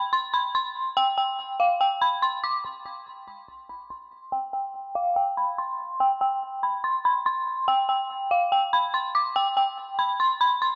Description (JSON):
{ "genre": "hip hop", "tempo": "143 BPM", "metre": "4/4", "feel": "half-time", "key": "unclear", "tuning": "A4 = 441 Hz", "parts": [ { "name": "dark detuned synth bell", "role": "solo", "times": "0.0-10.8 s", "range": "F5 to D6", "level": "-26 LUFS", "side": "equal", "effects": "chorus, tremolo, low-pass filter, digital delay" } ], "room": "light reverb, digital ambience", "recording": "none", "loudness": "-25 LUFS", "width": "mono", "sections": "0.0-2.6 A section; 2.6-9.4 B section; 9.4-10.8 C section", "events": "none", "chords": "none" }